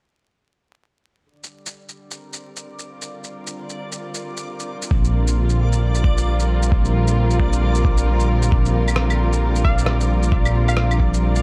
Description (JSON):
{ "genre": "future garage", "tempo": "133 BPM", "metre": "4/4", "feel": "swing 61% on 16ths", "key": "unclear", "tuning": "A4 = 440 Hz", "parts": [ { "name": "muted studio string section", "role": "sustained chords", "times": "1.3-11.4 s", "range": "D3 to Bb4", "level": "-28 LUFS", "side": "equal", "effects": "vintage 12-bit sampler grit, sidechain pumping" }, { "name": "backwards swelling texture", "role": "texture", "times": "2.6-11.4 s", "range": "D5", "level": "-36 LUFS", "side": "equal", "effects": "built-in reverb" }, { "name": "electronic shaker, claves and rim click", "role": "drums", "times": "1.4-11.4 s", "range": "none", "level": "-30 LUFS", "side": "equal", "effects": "none" }, { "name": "dark detuned saw bass", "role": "bass", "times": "4.9-11.4 s", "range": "Bb1", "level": "-20 LUFS", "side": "equal", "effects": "sidechain pumping" }, { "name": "electronic kick drum", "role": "drums", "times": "4.9-11.1 s", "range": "none", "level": "-21 LUFS", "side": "equal", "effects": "none" }, { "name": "glassy wavetable pluck", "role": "melody", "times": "9.6-10.9 s", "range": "F5", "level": "-31 LUFS", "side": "equal", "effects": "chorus, digital delay" } ], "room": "light reverb, digital ambience", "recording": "dark, warm production, vinyl crackle", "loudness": "-18 LUFS", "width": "mono", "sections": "1.3-8.5 A section; 8.5-11.4 B section", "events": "fade-in on string section 1.3-8.5; kick drops out 8.1-8.5", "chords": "1.3 Bb", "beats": "| 1.30 1.75 2.20 2.65 | 3.11 3.56 4.01 4.46 | 4.91 5.36 5.81 6.26 | 6.71 7.17 7.62 8.07 | 8.52 8.97 9.42 9.87 | 10.32 10.78 11.23" }